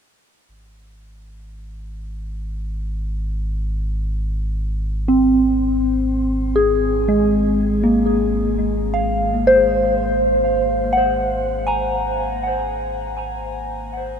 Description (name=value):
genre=ambient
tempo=free time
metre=none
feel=none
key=Ab mixolydian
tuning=A4 = 440 Hz
part: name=warm sub bass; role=bass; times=0.5-14.2 s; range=Ab1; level=-25 LUFS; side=equal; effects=none
part: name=soft synth bell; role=arpeggios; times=5.1-14.2 s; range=Ab3 to Bb5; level=-17 LUFS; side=equal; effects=chorus, phaser, tape echo, shimmer reverb
room=wet huge ambient reverb, RT60 7.4 s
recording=cassette tape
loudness=-17 LUFS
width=side -7 dB against mid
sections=0.5-14.2 A section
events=fade-out on sub bass 0.5-14.2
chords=0.5 Ab13